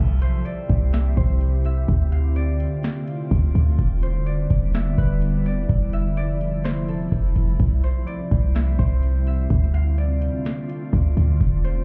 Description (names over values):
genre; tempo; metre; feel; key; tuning
hip hop, atmospheric cloud-rap; 126 BPM; 4/4; half-time; D dorian; A4 = 440 Hz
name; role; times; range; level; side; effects
Celtic harp; melody; 0.0-11.8 s; A4 to F5; -38 LUFS; equal; delay
glassy FM pad; sustained chords; 0.0-11.8 s; C3 to G4; -30 LUFS; equal; ensemble chorus, built-in reverb, sidechain pumping
warm 808-style bass; bass; 0.0-11.8 s; E1 to D2; -22 LUFS; equal; none
drifting glass-harmonics texture; texture; 0.0-11.8 s; F3 to D5; -43 LUFS; equal; chorus, built-in reverb
booming analog drum machine; drums; 0.2-11.8 s; hi-hat, kick drum, snare drum; -25 LUFS; equal; overdrive, vintage 12-bit sampler grit
room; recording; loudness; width
little or no reverb; heard muffled through a wall, club reverb, EQ; -21 LUFS; mono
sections
0.0-11.8 A section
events
none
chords
0.0 C; 1.9 Dm7; 3.8 Em7; 5.7 Fmaj7; 7.6 C; 9.5 Dm7